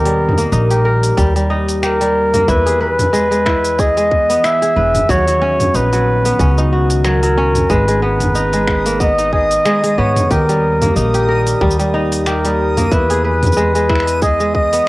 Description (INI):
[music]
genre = folktronica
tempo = 92 BPM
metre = 4/4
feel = swing 56% on 16ths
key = unclear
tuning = A4 = 437 Hz
[part]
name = mellow flugelhorn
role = melody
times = 0.0-14.9 s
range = A#4 to E5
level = -16 LUFS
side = equal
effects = vintage 12-bit sampler grit, cassette tape
[part]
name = warbly tape-like pad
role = sustained chords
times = 0.0-14.9 s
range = D#3 to A#5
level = -25 LUFS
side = left 1 dB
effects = chorus, built-in reverb
[part]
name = kora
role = arpeggios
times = 0.0-14.9 s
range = F#3 to B4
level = -18 LUFS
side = equal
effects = none
[part]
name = upright bass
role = bass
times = 0.0-14.8 s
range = E1 to G#2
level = -18 LUFS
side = equal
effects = none
[part]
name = organic electronic drum kit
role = drums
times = 0.1-14.8 s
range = finger snaps, hi-hat, shaker, toms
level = -21 LUFS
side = equal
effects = cassette tape
[part]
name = electronic kick drum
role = drums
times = 1.2-14.7 s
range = none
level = -18 LUFS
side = equal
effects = cassette tape
[part]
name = backwards swelling texture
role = texture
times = 8.8-14.9 s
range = D#6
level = -32 LUFS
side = right 2 dB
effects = built-in reverb
[sound]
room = light reverb, digital ambience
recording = home recording on cassette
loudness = -12 LUFS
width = side -20 dB against mid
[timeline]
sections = 0.0-14.9 A section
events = none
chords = 0.0 D#; 2.5 E; 5.1 Badd9; 7.7 G#madd9; 10.3 D#; 12.9 E